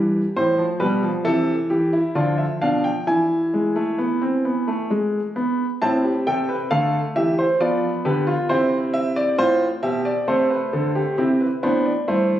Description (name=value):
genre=classical, baroque-style 4-part fugue for grand piano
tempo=67 BPM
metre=3/4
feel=straight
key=A minor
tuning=A4 = 442 Hz
part: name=warm grand piano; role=solo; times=0.0-12.4 s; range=G2 to A5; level=-18 LUFS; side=equal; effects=none
room=moderate recital hall reverb, RT60 1.4 s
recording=recorded on a phone in the room, studio ambience, compression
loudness=-18 LUFS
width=side -12 dB against mid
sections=0.0-5.8 A section; 5.8-11.2 B section; 11.2-12.4 C section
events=none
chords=0.4 Am; 2.2 Bdim/D; 3.1 E; 5.8 Am; 7.6 Dm/F; 8.5 Am/C; 11.2 C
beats=| 0.37 1.26 2.16 | 3.07 3.99 4.91 | 5.82 6.72 7.61 | 8.49 9.38 10.27 | 11.17 12.07